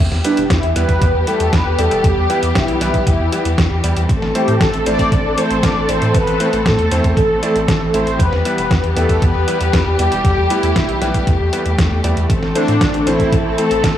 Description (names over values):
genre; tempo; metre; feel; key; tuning
italo disco; 117 BPM; 4/4; straight; unclear; A4 = 440 Hz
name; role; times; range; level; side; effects
warm symphonic string section; sustained chords; 0.0-14.0 s; E3 to A4; -20 LUFS; left 2 dB; none
round analog bass; bass; 0.0-13.9 s; E1 to A2; -20 LUFS; equal; tube saturation
detuned 8-bit digital drum machine; drums; 0.1-13.9 s; hi-hat, snare drum; -22 LUFS; equal; overdrive
clear electric grand piano; stabs; 0.2-13.7 s; G3 to E5; -23 LUFS; right 2 dB; none
mellow synth brass; melody; 0.3-14.0 s; D4 to D5; -19 LUFS; equal; chorus, analog delay
electronic kick drum; drums; 0.5-13.9 s; none; -18 LUFS; equal; overdrive
room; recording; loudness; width
digital ambience; dry, gritty hardware recording, small room ambience; -13 LUFS; side -11 dB against mid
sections
0.0-14.0 A section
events
none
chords
0.0 Em; 4.1 Am; 8.2 Em; 12.3 Am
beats
0.50 1.02 1.53 | 2.04 2.55 3.07 3.58 | 4.09 4.61 5.12 5.63 | 6.14 6.66 7.17 7.68 | 8.20 8.71 9.22 9.73 | 10.25 10.76 11.27 11.79 | 12.30 12.81 13.32 13.84